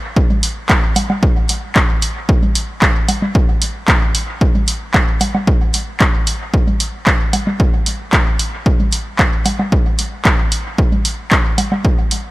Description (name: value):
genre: techno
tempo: 113 BPM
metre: 4/4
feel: straight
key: none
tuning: none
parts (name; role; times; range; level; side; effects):
- electronic kick drum; drums; 0.2-12.0 s; none; -14 LUFS; equal; none
- congas and woodblock; percussion; 0.3-11.8 s; none; -22 LUFS; right 1 dB; sidechain pumping on perc, dub echo
- punchy analog drum machine; drums; 0.4-12.2 s; handclaps, hi-hat; -19 LUFS; equal; dub echo
room: little or no reverb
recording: none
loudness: -13 LUFS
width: side -19 dB against mid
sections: 0.0-12.3 A section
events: none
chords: none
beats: | 0.17 0.70 1.23 1.76 | 2.29 2.82 3.35 3.88 | 4.41 4.94 5.47 6.00 | 6.54 7.07 7.60 8.13 | 8.66 9.19 9.72 10.25 | 10.78 11.31 11.85